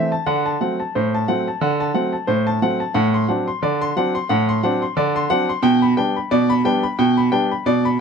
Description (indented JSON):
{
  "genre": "ragtime piano",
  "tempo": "89 BPM",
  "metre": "2/4",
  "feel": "swing 56% on 16ths",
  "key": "unclear",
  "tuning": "A4 = 440 Hz",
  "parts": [
    { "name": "clear baby grand piano", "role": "solo", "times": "0.0-8.0 s", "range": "A2 to C6", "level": "-17 LUFS", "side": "equal", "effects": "none" }
  ],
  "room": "light reverb",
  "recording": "none",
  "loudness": "-17 LUFS",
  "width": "side -6 dB against mid",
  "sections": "0.0-8.0 A section",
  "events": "none",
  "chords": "0.3 D7/A; 5.6 G/B"
}